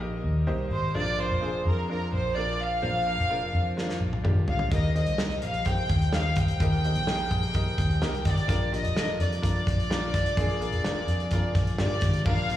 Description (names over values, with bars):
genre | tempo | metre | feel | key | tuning
piano-driven pop | 127 BPM | 4/4 | straight | unclear | A4 = 440 Hz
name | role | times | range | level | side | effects
warm chamber violin section | melody | 0.0-12.6 s | Bb4 to G5 | -30 LUFS | equal | slapback echo
bright upright piano | accompaniment | 0.0-12.6 s | Bb2 to C5 | -34 LUFS | left 1 dB | slapback echo
vintage muted picked electric bass | bass | 0.0-12.6 s | F1 to F2 | -27 LUFS | equal | none
loose indie drum kit | drums | 3.8-12.6 s | crash cymbal, hi-hat, kick drum, snare drum, toms | -29 LUFS | equal | none
room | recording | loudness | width
small room reverb | live gig heard through the venue's PA, recital hall reverb, small room ambience | -24 LUFS | side -12 dB against mid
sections
0.0-12.3 A section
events
drum fill 3.8-4.7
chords
0.0 Eb; 1.0 Bb; 4.7 Eb; 8.5 Bb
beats
0.01 0.48 | 0.95 1.42 1.89 2.37 | 2.84 3.31 3.78 4.25 | 4.72 5.19 5.66 6.13 | 6.60 7.08 7.54 8.02 | 8.49 8.96 9.43 9.90 | 10.37 10.84 11.31 11.78 | 12.25